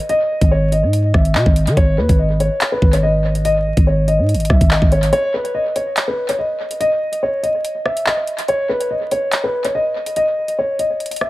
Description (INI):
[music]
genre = hip hop, drill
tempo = 143 BPM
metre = 4/4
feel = half-time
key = G# minor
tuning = A4 = 438 Hz
[part]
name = dark concert grand piano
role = melody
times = 0.0-11.3 s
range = B4 to E5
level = -18 LUFS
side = equal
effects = low-pass filter, tape echo
[part]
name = drill drum kit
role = drums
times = 0.1-11.3 s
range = handclaps, hi-hat, kick drum, rim click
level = -18 LUFS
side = equal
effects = tape echo
[part]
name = growling 808-style bass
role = bass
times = 0.4-5.1 s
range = G#1 to D#3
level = -16 LUFS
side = equal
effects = none
[sound]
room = digital ambience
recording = echo-heavy mix, vinyl crackle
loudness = -14 LUFS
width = side -17 dB against mid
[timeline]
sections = 0.0-11.3 A section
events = break 5.1-11.3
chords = 0.0 G#5; 5.1 N.C.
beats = | 0.09 0.51 0.93 1.35 | 1.77 2.19 2.61 3.03 | 3.45 3.87 4.29 4.71 | 5.13 5.55 5.97 6.39 | 6.81 7.23 7.65 8.06 | 8.48 8.90 9.32 9.74 | 10.16 10.58 11.00